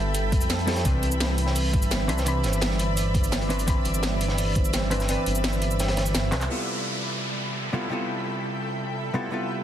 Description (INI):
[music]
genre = liquid drum and bass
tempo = 170 BPM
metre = 4/4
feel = straight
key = unclear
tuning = A4 = 443 Hz
[part]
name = hollow-body jazz guitar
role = accompaniment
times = 0.0-9.6 s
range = C3 to B5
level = -29 LUFS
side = equal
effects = dub echo
[part]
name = shimmering ambient pad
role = sustained chords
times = 0.0-9.6 s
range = A4 to B5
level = -32 LUFS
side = equal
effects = chorus, built-in reverb, sidechain pumping
[part]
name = vibraphone with medium mallets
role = arpeggios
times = 0.0-6.5 s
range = A4 to A5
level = -35 LUFS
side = right 5 dB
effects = dub echo
[part]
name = dark detuned saw bass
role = bass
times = 0.0-6.5 s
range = G1 to F2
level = -26 LUFS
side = equal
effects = none
[part]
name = crunchy breakbeat drum kit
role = drums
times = 0.1-6.5 s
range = hi-hat, snare drum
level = -33 LUFS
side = equal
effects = high-pass filter on hats, high-pass filter on snare, high-pass filter on room
[part]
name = drum and bass drum kit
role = drums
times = 0.1-6.6 s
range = cabasa, crash cymbal, handclaps, hi-hat, snare drum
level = -32 LUFS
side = equal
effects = low-pass filter on hats, low-pass filter on cymbals, low-pass filter on perc, low-pass filter on snare, low-pass filter on room
[part]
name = electronic kick drum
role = drums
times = 0.3-4.6 s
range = none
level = -24 LUFS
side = equal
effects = none
[part]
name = downlifter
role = sound effects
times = 6.5-9.3 s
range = none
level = -33 LUFS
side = equal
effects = none
[sound]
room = light reverb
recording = dense, heavily limited modern master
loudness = -23 LUFS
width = side -10 dB against mid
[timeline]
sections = 0.0-6.5 A section; 6.5-9.6 B section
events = drop 0.0-6.5; kick drops out 5.1-6.5; drum fill 6.3; band accent 6.4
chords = 0.0 Fmaj9#11; 0.9 Cmaj9; 6.5 Fmaj9#11/C